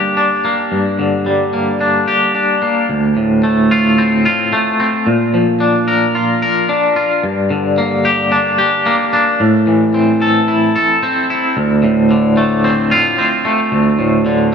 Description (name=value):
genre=rock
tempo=111 BPM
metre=4/4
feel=straight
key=D minor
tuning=A4 = 439 Hz
part: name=twangy electric guitar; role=solo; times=0.0-14.5 s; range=D2 to Bb4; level=-11 LUFS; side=equal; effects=tremolo, slapback echo, analog delay
room=wet lush hall reverb, RT60 2.7 s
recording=big arena sound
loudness=-11 LUFS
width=side -6 dB against mid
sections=0.0-2.9 A section; 2.9-11.6 B section; 11.6-14.5 C section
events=build-up 2.9-11.6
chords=0.0 Gm; 2.9 Dm7; 5.1 Bb; 7.2 Gm; 9.4 Am; 11.6 Dm7